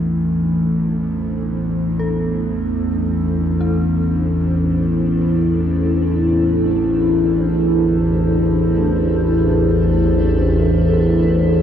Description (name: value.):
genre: dark ambient drone.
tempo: free time.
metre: none.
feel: none.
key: A minor.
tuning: A4 = 441 Hz.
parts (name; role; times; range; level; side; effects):
granular cloud pad; sustained chords; 0.0-11.6 s; D4 to C5; -25 LUFS; right 1 dB; built-in reverb.
dark detuned synth bell; arpeggios; 0.0-11.6 s; D4 to A4; -34 LUFS; left 4 dB; chorus, phaser, tape echo.
overtone-sweeping drone; drone; 0.0-11.6 s; A1 to E2; -15 LUFS; equal; chorus, built-in reverb.
room: wet cathedral reverb, RT60 6.2 s.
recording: none.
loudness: -15 LUFS.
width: side -9 dB against mid.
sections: 0.0-11.6 A section.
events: fade-in on ambient pad 0.0-11.6; fade-in on synth bell 0.0-11.6.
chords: 0.0 A5.